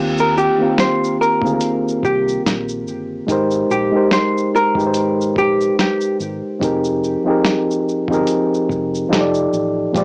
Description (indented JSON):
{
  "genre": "lo-fi hip hop",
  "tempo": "72 BPM",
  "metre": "4/4",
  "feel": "swing 57% on 16ths",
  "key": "unclear",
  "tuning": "A4 = 439 Hz",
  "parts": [
    { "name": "reed electric piano", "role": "accompaniment", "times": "0.0-10.0 s", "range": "Bb2 to D5", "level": "-20 LUFS", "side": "equal", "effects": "cassette tape, low-pass filter" },
    { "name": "vintage muted fingered electric bass", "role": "bass", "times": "0.0-10.0 s", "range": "F1 to Eb2", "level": "-32 LUFS", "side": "equal", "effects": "none" },
    { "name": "archtop guitar, miked and amplified", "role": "melody", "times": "0.2-6.2 s", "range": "G4 to C5", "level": "-21 LUFS", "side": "equal", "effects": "low-pass filter, cassette tape, tape echo" },
    { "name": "dusty soul sampler-style drum kit", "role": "drums", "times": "0.2-10.0 s", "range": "hi-hat, kick drum, shaker, snare drum", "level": "-24 LUFS", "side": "equal", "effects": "cassette tape" }
  ],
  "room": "moderate small room reverb, RT60 0.5 s",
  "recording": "home recording on cassette, small speaker sound",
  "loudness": "-17 LUFS",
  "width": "mono",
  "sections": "0.0-10.0 A section",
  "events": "none",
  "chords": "0.0 Eb6; 3.3 Abmaj9; 6.6 Fm11; 9.1 F13"
}